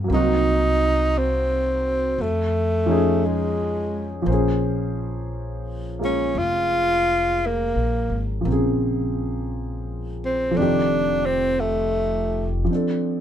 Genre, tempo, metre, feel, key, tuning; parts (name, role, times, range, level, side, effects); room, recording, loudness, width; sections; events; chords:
jazz ballad; 57 BPM; 4/4; swing 67% on 8ths; Bb minor; A4 = 440 Hz
warm concert grand piano; accompaniment; 0.0-13.2 s; Db3 to C5; -24 LUFS; equal
upright bass; bass; 0.0-12.7 s; F1 to F2; -26 LUFS; equal
breathy tenor saxophone; melody; 0.1-12.5 s; G#3 to F4; -22 LUFS; equal
light reverb; minimal, uncompressed stereo recording; -20 LUFS; side -10 dB against mid
0.0-12.7 A section
0.1 Cm7b5; 2.2 F7alt; 4.3 Bbm7; 10.6 F9; 12.7 Bbmaj9 (rootless)